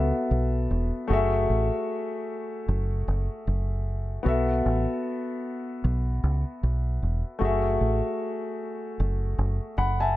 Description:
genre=lovers rock reggae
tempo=76 BPM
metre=4/4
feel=swing 56% on 16ths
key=unclear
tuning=A4 = 440 Hz
part: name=warm baby grand piano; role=accompaniment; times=0.0-10.2 s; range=A3 to B5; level=-28 LUFS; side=left 2 dB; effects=none
part: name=deep dub fingered electric bass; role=bass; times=0.0-10.2 s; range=E1 to C#2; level=-25 LUFS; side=equal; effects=none
room=light reverb, small room ambience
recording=none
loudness=-24 LUFS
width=side -16 dB against mid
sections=0.0-10.2 A section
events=grand piano fill 9.4-10.2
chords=0.0 B7sus4; 1.1 F#m9; 4.3 B7sus4; 7.4 F#m9

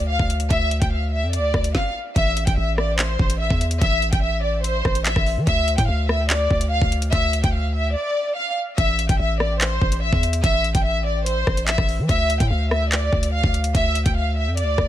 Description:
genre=hip hop, drill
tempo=145 BPM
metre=4/4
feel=half-time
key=A minor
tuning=A4 = 441 Hz
part: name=rich studio violin section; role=melody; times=0.0-14.9 s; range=C5 to G5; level=-23 LUFS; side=equal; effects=low-pass filter, ping-pong delay
part: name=long sustained 808-style bass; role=bass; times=0.0-14.9 s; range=A1 to E3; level=-22 LUFS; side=equal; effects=none
part: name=drill drum kit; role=drums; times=0.2-14.9 s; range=handclaps, hi-hat, kick drum, rim click, snare drum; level=-22 LUFS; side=equal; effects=overdrive
room=digital ambience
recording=none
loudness=-18 LUFS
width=side -12 dB against mid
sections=0.0-2.2 A section; 2.2-14.9 B section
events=stop 1.7-2.2; break 8.0-8.8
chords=0.0 Dm; 2.2 Am; 5.5 D5; 8.8 Am; 12.1 N.C.

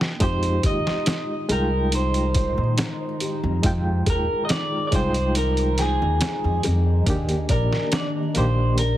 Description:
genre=trip hop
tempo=70 BPM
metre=4/4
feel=straight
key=F dorian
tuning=A4 = 439 Hz
part: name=barky reed electric piano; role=accompaniment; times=0.0-9.0 s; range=Eb3 to G5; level=-29 LUFS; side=equal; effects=fast tremolo, tape echo
part: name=trip hop sampler-style drum kit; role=drums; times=0.0-9.0 s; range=hi-hat, kick drum, snare drum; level=-25 LUFS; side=equal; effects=none
part: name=electric guitar through a small old amp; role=melody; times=0.2-9.0 s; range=Ab4 to Eb5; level=-27 LUFS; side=equal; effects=dub echo
part: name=felt-muted upright piano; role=arpeggios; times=0.2-9.0 s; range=D4 to G5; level=-31 LUFS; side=left 2 dB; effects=dub echo
part: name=upright bass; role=bass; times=0.2-9.0 s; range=Bb1 to Bb2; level=-22 LUFS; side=equal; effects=none
part: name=wind-like tuned noise texture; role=texture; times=1.0-9.0 s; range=Eb3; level=-35 LUFS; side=right 1 dB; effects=built-in reverb
room=digital ambience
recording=heavily compressed radio sound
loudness=-20 LUFS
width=side -13 dB against mid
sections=0.2-9.0 A section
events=drum fill 0.0; stop 0.0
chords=0.2 Fm9; 7.1 Ebmaj7

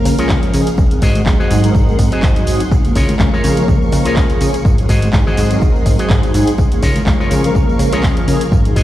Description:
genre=filtered disco house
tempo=124 BPM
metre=4/4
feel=swing 55% on 16ths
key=Db major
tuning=A4 = 440 Hz
part: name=mellow synth brass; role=accompaniment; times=0.0-8.7 s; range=F3 to Bb4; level=-18 LUFS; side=equal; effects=chorus, phaser, sidechain pumping
part: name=string machine, full ensemble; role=sustained chords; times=0.0-8.8 s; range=Gb4 to Db6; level=-26 LUFS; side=equal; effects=ensemble chorus, sidechain pumping
part: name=electric guitar with an envelope filter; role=riff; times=0.1-8.8 s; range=F4 to Eb5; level=-22 LUFS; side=left 2 dB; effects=vintage 12-bit sampler grit, sidechain pumping
part: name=plucky analog bass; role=bass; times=0.1-8.8 s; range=Ab1 to Db3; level=-17 LUFS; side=equal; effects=sidechain pumping
part: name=punchy analog drum machine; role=drums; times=0.1-8.8 s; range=handclaps, hi-hat, tambourine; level=-25 LUFS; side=equal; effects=sidechain pumping on perc, sidechain pumping on hats
part: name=tambourine and congas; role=percussion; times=0.1-8.8 s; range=none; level=-26 LUFS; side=left 2 dB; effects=none
part: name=electronic kick drum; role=drums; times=0.3-8.8 s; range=none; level=-14 LUFS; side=equal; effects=none
room=digital ambience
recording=played on a big sound system in a bare room, large studio reverb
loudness=-11 LUFS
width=side -14 dB against mid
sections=0.0-8.8 A section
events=none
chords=0.0 Db6; 0.8 Ab7; 2.7 Db6; 4.7 Ab7; 6.6 Db6

